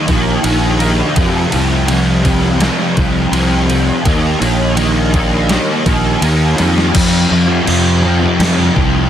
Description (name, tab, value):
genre	rock, shoegaze and dream pop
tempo	83 BPM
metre	4/4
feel	straight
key	unclear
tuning	A4 = 440 Hz
part	fuzz guitar	riff	0.0-9.1 s	F2 to Eb4	-14 LUFS	equal	distortion, ensemble chorus
part	fuzz fingered electric bass	bass	0.1-9.1 s	Bb1 to F2	-15 LUFS	equal	overdrive
part	gated 80s digital drum machine	drums	0.1-8.9 s	crash cymbal, kick drum, ride cymbal, snare drum	-18 LUFS	equal	gated reverb, gated reverb snare
room	light reverb, digital ambience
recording	dense, heavily limited modern master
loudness	-11 LUFS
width	side -10 dB against mid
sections	0.0-6.9 A section; 6.9-9.1 B section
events	drum fill 6.6-6.9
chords	0.0 Eb5; 1.2 F5; 4.0 Eb5; 6.9 F5